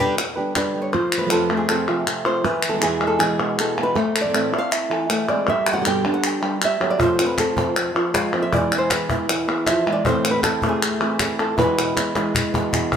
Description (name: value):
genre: flamenco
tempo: 158 BPM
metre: 4/4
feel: straight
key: E phrygian dominant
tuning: A4 = 439 Hz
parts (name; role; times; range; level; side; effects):
- flamenco guitar; melody; 0.0-13.0 s; A2 to G5; -21 LUFS; equal; none
- flamenco guitar; stabs; 0.0-13.0 s; E2 to G4; -26 LUFS; right 4 dB; none
- palmas hand claps; percussion; 0.2-13.0 s; none; -23 LUFS; left 2 dB; none
- cajon; percussion; 0.6-0.7, 7.0-13.0 s; none; -27 LUFS; left 2 dB; none
room: moderate stone room reverb, RT60 1.0 s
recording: minimal, uncompressed stereo recording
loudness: -18 LUFS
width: side -8 dB against mid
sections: 0.9-13.0 A section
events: drum fill 12.0-13.0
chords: 0.0 G; 0.9 F; 2.4 E; 4.0 Am; 5.5 G; 7.0 F; 8.5 E; 10.1 Am; 11.6 E